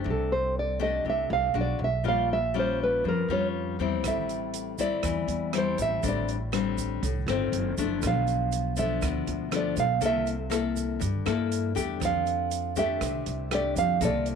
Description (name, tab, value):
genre	bossa nova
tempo	120 BPM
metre	4/4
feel	straight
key	F major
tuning	A4 = 440 Hz
part	nylon-string guitar	accompaniment	0.0-14.4 s	G2 to A4	-30 LUFS	left 10 dB	none
part	upright bass	bass	0.0-14.4 s	F#1 to G2	-32 LUFS	right 2 dB	none
part	nylon-string guitar	melody	0.1-14.3 s	A4 to F5	-28 LUFS	right 4 dB	none
part	open jazz drum kit	drums	4.0-14.4 s	hi-hat, kick drum, rim click	-37 LUFS	right 7 dB	none
part	tube shaker	percussion	4.0-14.4 s	none	-42 LUFS	right 18 dB	none
room	light reverb, studio ambience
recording	1960s-style stereo with parts hard left and right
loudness	-25 LUFS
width	side -6 dB against mid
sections	0.0-14.4 A section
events	nylon-string guitar solo 0.0-14.4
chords	0.1 Csus2; 1.5 Bm6; 2.0 Bbm6; 4.0 Am7; 6.0 Gsus24; 7.5 F#dim7; 8.0 Bm7b5; 10.0 C13; 12.0 F69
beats	| 0.05 0.55 1.05 1.55 | 2.04 2.54 3.04 3.54 | 4.04 4.54 5.04 5.54 | 6.03 6.53 7.03 7.53 | 8.03 8.53 9.02 9.52 | 10.02 10.52 11.02 11.52 | 12.02 12.51 13.01 13.51 | 14.01